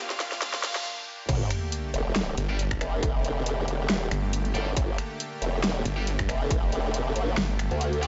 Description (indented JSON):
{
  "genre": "heavy wobble dubstep",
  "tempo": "138 BPM",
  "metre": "4/4",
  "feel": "swing 55% on 16ths, half-time",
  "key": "G minor",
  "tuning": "A4 = 440 Hz",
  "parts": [
    { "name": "warm studio violin section", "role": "melody", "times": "0.0-0.8 s", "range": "F4 to F5", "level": "-40 LUFS", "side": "equal", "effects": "digital delay" },
    { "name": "supersaw pad", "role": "sustained chords", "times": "0.0-8.1 s", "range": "Bb2 to G4", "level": "-38 LUFS", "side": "equal", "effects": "sidechain pumping" },
    { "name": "riser and sub drop", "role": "sound effects", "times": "0.0-3.0 s", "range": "none", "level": "-36 LUFS", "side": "equal", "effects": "none" },
    { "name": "dubstep drum kit", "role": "drums", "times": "0.1-8.1 s", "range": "crash cymbal, finger snaps, hi-hat, snare drum", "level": "-32 LUFS", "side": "equal", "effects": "high-pass filter on snare, high-pass filter on hats, high-pass filter on cymbals" },
    { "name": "formant-sweep wobble bass", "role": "bass", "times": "1.3-8.1 s", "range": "F1 to D2", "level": "-30 LUFS", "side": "equal", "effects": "chorus, overdrive" },
    { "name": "electronic kick drum", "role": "drums", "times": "1.3-6.6 s", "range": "none", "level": "-31 LUFS", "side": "equal", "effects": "distortion" },
    { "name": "snarling distorted saw bass", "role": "bass", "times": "2.4-7.7 s", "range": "G1", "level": "-30 LUFS", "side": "equal", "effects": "distortion, overdrive" },
    { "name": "heavy high-gain guitar", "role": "stabs", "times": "2.5-8.1 s", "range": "G3 to G4", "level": "-40 LUFS", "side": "equal", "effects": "distortion, digital delay" }
  ],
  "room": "light reverb",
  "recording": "high-pass filter, nothing above 7.8 kHz",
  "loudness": "-28 LUFS",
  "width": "mono",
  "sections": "0.0-1.3 A section; 1.3-8.1 B section",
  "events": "build-up 0.0-1.3; drum fill 0.0-0.9; riser 0.0-0.9; break 0.9-1.3; drop 1.3-8.1; impact 1.3-3.0",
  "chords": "0.0 Gm; 1.3 Gmadd9",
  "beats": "0.42 0.85 | 1.29 1.72 2.16 2.59 | 3.03 3.46 3.90 4.33 | 4.77 5.20 5.63 6.07 | 6.50 6.94 7.38 7.81"
}